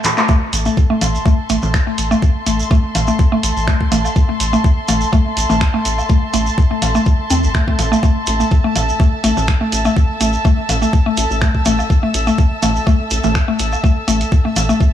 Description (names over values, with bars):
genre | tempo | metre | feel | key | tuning
minimal techno | 124 BPM | 4/4 | swing 54% on 16ths | A minor | A4 = 439 Hz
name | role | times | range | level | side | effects
punchy analog drum machine | drums | 0.0-14.7 s | finger snaps, handclaps, hi-hat | -22 LUFS | equal | none
congas and woodblock | percussion | 0.0-14.7 s | none | -25 LUFS | equal | tape echo
shekere | percussion | 0.0-14.9 s | none | -26 LUFS | right 4 dB | none
muted studio string section | texture | 0.0-14.9 s | A4 to E6 | -22 LUFS | equal | sidechain pumping
mallet-like synth pluck | riff | 0.2-14.7 s | A3 to C4 | -19 LUFS | left 1 dB | chorus, cassette tape, sidechain pumping, tape echo
electronic kick drum | drums | 0.3-14.9 s | none | -13 LUFS | equal | overdrive
rubbery square bass | bass | 0.5-14.7 s | G1 to E2 | -19 LUFS | equal | tube saturation, sidechain pumping
room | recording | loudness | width
light reverb | none | -13 LUFS | side -11 dB against mid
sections
0.3-14.9 A section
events
break 0.0; drum fill 0.0; band accent 0.2; drop 0.3-14.9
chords
0.3 Am